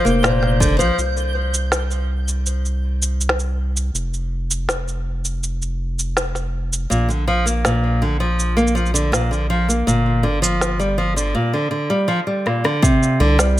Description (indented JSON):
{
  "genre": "folktronica",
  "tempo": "81 BPM",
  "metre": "4/4",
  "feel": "straight",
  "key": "unclear",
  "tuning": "A4 = 440 Hz",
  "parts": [
    { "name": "music box", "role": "second line", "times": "0.0-1.0 s", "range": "C5", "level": "-26 LUFS", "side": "left 4 dB", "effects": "ping-pong delay" },
    { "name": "nylon-string guitar", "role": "arpeggios", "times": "0.0-1.0, 6.9-13.6 s", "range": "Bb2 to Bb3", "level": "-18 LUFS", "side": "equal", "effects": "ping-pong delay" },
    { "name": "twinkling granular texture", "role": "texture", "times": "0.0-1.0 s", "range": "G6", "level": "-30 LUFS", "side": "right 4 dB", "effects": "built-in reverb" },
    { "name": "round analog bass", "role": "bass", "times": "0.1-13.6 s", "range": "F1 to C2", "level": "-21 LUFS", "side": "equal", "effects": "none" },
    { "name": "electronic shaker, snare drum and rim click", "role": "drums", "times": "0.1-13.5 s", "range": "none", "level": "-22 LUFS", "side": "equal", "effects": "none" },
    { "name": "electronic kick drum", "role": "drums", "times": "0.6-0.8, 12.8-13.0 s", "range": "none", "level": "-18 LUFS", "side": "equal", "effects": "none" }
  ],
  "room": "digital ambience",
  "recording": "none",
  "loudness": "-17 LUFS",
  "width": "side -14 dB against mid",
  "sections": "1.0-12.8 A section",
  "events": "drum fill 12.5-12.8",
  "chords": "0.0 Bb; 1.0 N.C.; 6.9 Bb; 9.9 Gm7; 12.8 Csus2",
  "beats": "0.24 | 0.98 1.72 2.46 3.20 | 3.94 4.68 5.42 6.17 | 6.91 7.65 8.39 9.13 | 9.87 10.61 11.35 12.09 | 12.83 13.57"
}